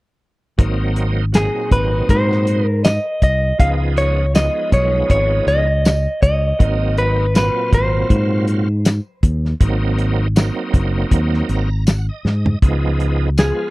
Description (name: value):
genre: straight-eighth soul blues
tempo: 80 BPM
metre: 4/4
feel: swing 56% on 16ths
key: Ab mixolydian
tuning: A4 = 440 Hz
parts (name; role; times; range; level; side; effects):
- bright tonewheel organ; accompaniment; 0.6-13.7 s; Bb2 to Bb5; -24 LUFS; right 3 dB; slow rotary speaker, chorus vibrato
- fingered electric bass; bass; 0.6-13.5 s; Gb1 to Ab2; -17 LUFS; equal; none
- warm soul drum kit; drums; 0.6-13.6 s; hi-hat, kick drum, snare drum, tambourine, toms; -14 LUFS; equal; none
- direct-recorded clean electric guitar; melody; 1.4-8.4, 13.4-13.7 s; Ab4 to F5; -19 LUFS; equal; spring reverb
room: little or no reverb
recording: dry, close 1970s-style studio recording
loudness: -14 LUFS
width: side -20 dB against mid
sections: 0.6-13.7 A section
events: tonewheel organ fill 11.1-12.6; drum fill 12.2-12.6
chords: 0.6 Ab9; 3.6 Db9; 6.6 Ab9; 12.6 Db9